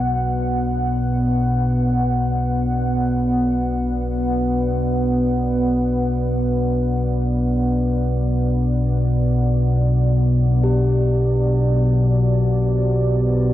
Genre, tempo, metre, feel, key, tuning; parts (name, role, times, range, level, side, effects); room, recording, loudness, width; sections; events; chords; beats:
dark ambient drone; free time; B phrygian; A4 = 440 Hz
deep dark ambient pad; sustained chords; 0.0-13.5 s; B2 to F#5; -21 LUFS; equal; chorus, built-in reverb
deep rumbling drone; drone; 0.0-13.5 s; B1 to B2; -19 LUFS; equal; built-in reverb
quartz singing bowl; texture; 0.0-13.5 s; F#4 to G4; -28 LUFS; left 1 dB
wet cathedral reverb, RT60 6.4 s; worn, warbling old tape, cassette tape, warbly pitch drift; -17 LUFS; side -13 dB against mid
0.0-13.5 A section
0.0 Bm; 10.6 Cadd9/B
free time